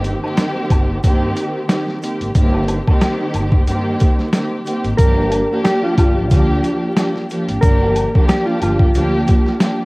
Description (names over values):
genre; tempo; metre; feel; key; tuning
hip hop, boom-bap hip-hop; 91 BPM; 4/4; swing 56% on 16ths; G minor; A4 = 435 Hz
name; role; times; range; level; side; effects
warm studio string section; accompaniment; 0.0-9.8 s; Eb3 to G4; -19 LUFS; equal; high-pass filter, low-pass filter, cassette tape
upright bass; bass; 0.0-9.2 s; G1 to G2; -21 LUFS; equal; none
boom bap sampler-style drum kit; drums; 0.0-9.8 s; hi-hat, kick drum, snare drum; -15 LUFS; equal; cassette tape
tube shaker and woodblock; percussion; 0.0-9.8 s; none; -32 LUFS; left 2 dB; none
mellow electric guitar; melody; 5.0-9.6 s; F4 to Bb4; -20 LUFS; equal; high-pass filter, low-pass filter, cassette tape, tape echo
room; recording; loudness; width
small room ambience; home recording on cassette, vinyl crackle; -14 LUFS; side -25 dB against mid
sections
0.0-5.0 A section; 5.0-9.8 B section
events
none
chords
0.0 Cm7/G; 5.0 Gm7